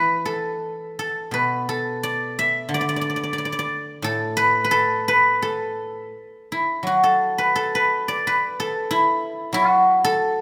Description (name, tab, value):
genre	chinese traditional, Chinese solo plucked strings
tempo	88 BPM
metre	2/4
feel	rubato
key	A zhi mode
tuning	A4 = 440 Hz
part	guzheng	solo	0.0-10.4 s	A2 to E5	-21 LUFS	equal	none
room	moderate scoring stage reverb, RT60 1.9 s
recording	none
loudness	-21 LUFS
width	mono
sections	0.0-6.8 A section; 6.8-10.4 B section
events	none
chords	none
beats	0.64 | 1.34 2.03 | 2.71 3.38 | 4.04 4.73 | 5.42 6.12 | 6.84 7.54 | 8.22 8.88 | 9.54 10.21